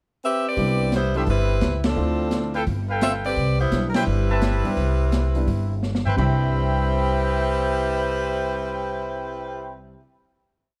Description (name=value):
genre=jazz, big band swing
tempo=171 BPM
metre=4/4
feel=swing 65% on 8ths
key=C major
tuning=A4 = 441 Hz
part: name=edgy saxophone section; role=melody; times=0.2-9.8 s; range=F3 to E5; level=-28 LUFS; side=equal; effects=none
part: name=warm concert grand piano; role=accompaniment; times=0.6-10.0 s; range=C3 to B4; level=-33 LUFS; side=equal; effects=none
part: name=upright bass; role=bass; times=0.6-9.9 s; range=G1 to G2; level=-26 LUFS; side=equal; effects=none
part: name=open jazz drum kit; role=drums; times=0.6-6.3 s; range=crash cymbal, hi-hat, kick drum, ride cymbal, snare drum, toms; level=-29 LUFS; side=equal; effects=none
part: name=warm trumpet section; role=stabs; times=1.2-9.8 s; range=C4 to B5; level=-30 LUFS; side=equal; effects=none
room=little or no reverb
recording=close, detailed microphones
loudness=-23 LUFS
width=mono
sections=0.0-0.6 pickup bar; 0.6-6.2 A section; 6.2-9.0 final chord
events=band accent 1.8, 3.9; drum fill 5.8-6.2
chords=0.0 C5; 0.6 Cmaj7; 2.0 Dm7; 2.7 G9; 3.4 Cmaj7